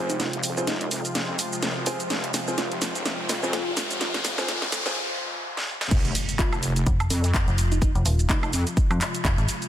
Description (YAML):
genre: bass house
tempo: 126 BPM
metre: 4/4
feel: swing 57% on 16ths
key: F minor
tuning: A4 = 441 Hz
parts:
  - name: sweeping resonant pad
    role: sustained chords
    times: 0.0-9.7 s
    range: C3 to F4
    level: -35 LUFS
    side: left 1 dB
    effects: chorus, sidechain pumping
  - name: warm baby grand piano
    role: stabs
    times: 0.0-4.9 s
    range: C4 to C5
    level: -33 LUFS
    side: right 1 dB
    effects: sidechain pumping, tape echo
  - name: wobble bass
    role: bass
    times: 0.0-8.6 s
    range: Eb1 to F2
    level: -29 LUFS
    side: equal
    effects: chorus, tube saturation, sidechain pumping, high-pass filter
  - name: riser, noise sweep and impact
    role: sound effects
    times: 1.0-7.8 s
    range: none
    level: -33 LUFS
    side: left 1 dB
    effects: none
  - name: airy breathy pad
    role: texture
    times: 0.0-5.0 s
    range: F4 to G5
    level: -38 LUFS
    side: equal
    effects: none
  - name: bell-like FM electric piano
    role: melody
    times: 0.1-8.5 s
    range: Eb4 to F4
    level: -35 LUFS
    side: equal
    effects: chorus, phaser, tape echo
  - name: garage drum kit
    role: drums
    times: 0.1-9.7 s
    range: crash cymbal, handclaps, hi-hat, shaker, snare drum, woodblock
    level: -28 LUFS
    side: right 1 dB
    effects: soft clipping on snare
  - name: electronic kick drum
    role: drums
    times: 5.9-9.4 s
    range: none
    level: -24 LUFS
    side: equal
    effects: none
  - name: metallic FM bass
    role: bass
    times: 6.9-9.5 s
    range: Eb1 to F2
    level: -23 LUFS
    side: equal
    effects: tube saturation, sidechain pumping
room: light reverb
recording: dense, heavily limited modern master, high-pass filter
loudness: -22 LUFS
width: side -11 dB against mid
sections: 0.0-5.9 A section; 5.9-9.7 B section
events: build-up 0.0-5.9; drum fill 0.0-5.0, 5.6-5.9; riser 1.0-5.0; noise sweep 4.0-5.9; break 5.0-5.9; drop 5.9-9.7; impact 5.9-7.8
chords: 0.0 Fm